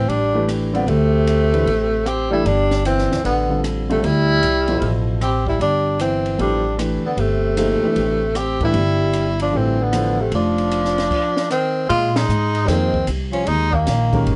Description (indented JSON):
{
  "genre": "modal jazz",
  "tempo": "152 BPM",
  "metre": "4/4",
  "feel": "swing 65% on 8ths",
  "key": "D dorian",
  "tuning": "A4 = 440 Hz",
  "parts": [
    { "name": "mellow tenor saxophone", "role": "melody", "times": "0.0-14.3 s", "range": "A3 to G4", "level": "-22 LUFS", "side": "equal", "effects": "none" },
    { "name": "breathy tenor saxophone", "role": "second line", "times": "0.0-14.3 s", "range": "C3 to C4", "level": "-27 LUFS", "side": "equal", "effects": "none" },
    { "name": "upright bass", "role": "bass", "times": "0.0-14.4 s", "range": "F1 to Bb2", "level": "-23 LUFS", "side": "equal", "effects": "none" },
    { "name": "compact cocktail drum kit", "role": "drums", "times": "0.1-14.4 s", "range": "crash cymbal, hi-hat, kick drum, ride cymbal, rim click, snare drum", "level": "-33 LUFS", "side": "equal", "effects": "none" },
    { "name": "warm grand piano", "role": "accompaniment", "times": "0.3-10.2, 12.7-14.4 s", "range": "B2 to D5", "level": "-26 LUFS", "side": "equal", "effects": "none" }
  ],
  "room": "light reverb",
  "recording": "nothing above 10.7 kHz",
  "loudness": "-19 LUFS",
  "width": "mono",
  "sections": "0.0-11.9 A section; 11.9-14.4 B section",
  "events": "band accent 12.1",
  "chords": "0.0 D9sus4; 10.3 F5; 11.9 Bb9sus4",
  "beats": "0.09 0.49 | 0.88 1.27 1.67 2.06 | 2.46 2.85 3.24 3.64 | 4.03 4.42 4.82 5.21 | 5.60 6.00 6.39 6.78 | 7.17 7.57 7.96 8.35 | 8.75 9.14 9.53 9.93 | 10.32 10.71 11.11 11.50 | 11.90 12.29 12.68 13.08 | 13.47 13.87 14.26"
}